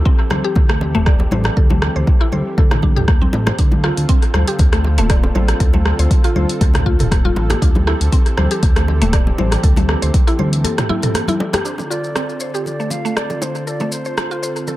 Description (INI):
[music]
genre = afro house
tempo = 119 BPM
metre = 4/4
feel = swing 54% on 16ths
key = D minor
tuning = A4 = 440 Hz
[part]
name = warm analog pad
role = sustained chords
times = 0.0-14.8 s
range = D3 to A4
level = -26 LUFS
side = right 1 dB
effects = chorus, sidechain pumping
[part]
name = smooth synth bass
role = bass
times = 0.0-10.6 s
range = D1 to D2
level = -18 LUFS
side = equal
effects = sidechain pumping
[part]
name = mallet-like synth pluck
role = arpeggios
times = 0.1-14.8 s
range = A3 to D5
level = -24 LUFS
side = equal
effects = chorus, vintage 12-bit sampler grit, sidechain pumping, dub echo
[part]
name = electronic kick drum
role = drums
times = 0.1-10.2 s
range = none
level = -14 LUFS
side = equal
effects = overdrive
[part]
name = congas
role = percussion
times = 0.1-11.6 s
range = none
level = -24 LUFS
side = left 3 dB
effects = dub echo
[part]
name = deep house drum kit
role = drums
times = 0.3-14.3 s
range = hi-hat, rim click, toms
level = -23 LUFS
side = equal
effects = dub echo
[part]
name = bongos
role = percussion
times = 0.6-14.8 s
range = none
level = -28 LUFS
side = equal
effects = none
[part]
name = concert flute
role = melody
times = 11.7-14.8 s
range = C5 to F5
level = -27 LUFS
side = equal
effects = dub echo
[part]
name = maracas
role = percussion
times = 11.7-14.8 s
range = none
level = -30 LUFS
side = left 2 dB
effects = none
[sound]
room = light reverb, small room ambience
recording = echo-heavy mix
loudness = -13 LUFS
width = side -16 dB against mid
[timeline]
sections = 0.0-11.7 A section; 11.7-14.8 B section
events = break 10.6-11.7; band accent 11.5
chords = 0.0 Am7/D; 3.6 Dm7; 7.6 Am7/D; 11.7 Dm7